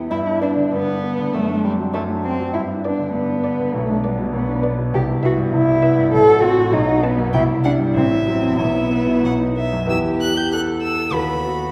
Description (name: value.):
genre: quick classical-period movement for piano trio.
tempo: 99 BPM.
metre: 2/4.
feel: rubato.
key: G major, E minor from 4.9 s.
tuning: A4 = 438 Hz.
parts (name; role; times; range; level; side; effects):
dark cello; second line; 0.0-11.7 s; G3 to B4; -22 LUFS; equal; none.
bright concert grand piano; accompaniment; 0.0-11.7 s; A1 to A4; -22 LUFS; equal; none.
rich violin; melody; 0.1-11.7 s; G3 to G6; -29 LUFS; equal; none.
room: wet recital hall reverb, RT60 1.8 s.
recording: none.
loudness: -19 LUFS.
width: mono.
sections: 0.1-9.9 A section; 9.9-11.7 B section.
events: none.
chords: 0.1 G; 1.3 D7/F#; 2.6 G; 3.7 Bm7; 4.9 Cmaj7; 6.1 F#dim/A; 6.7 B7; 7.3 C; 8.0 F#m7b5/A; 8.6 E5/B; 9.3 B; 9.9 Em; 11.1 B7/D#.